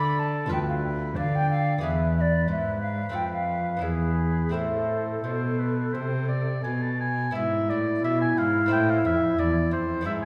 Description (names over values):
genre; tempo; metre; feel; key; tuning
classical, baroque-style sonata movement with continuo; 87 BPM; 4/4; uneven beats, rubato; A minor; A4 = 440 Hz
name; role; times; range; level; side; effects
warm oboe; melody; 0.0-10.2 s; A4 to A5; -33 LUFS; equal; none
hollow wooden flute; second line; 0.0-10.2 s; E4 to B5; -30 LUFS; equal; none
lute; accompaniment; 0.0-10.2 s; D2 to D5; -36 LUFS; equal; none
rich cello; bass; 0.0-10.2 s; D2 to D3; -29 LUFS; equal; none
room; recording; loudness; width
wet recital hall reverb, RT60 1.4 s; heard from further back in the room; -26 LUFS; mono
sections
0.0-7.3 A section; 7.3-10.2 A section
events
none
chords
0.0 Dm; 0.5 Bdim/D; 1.8 E7; 3.1 F; 3.8 E; 4.5 Am; 7.3 E/G#; 8.7 Am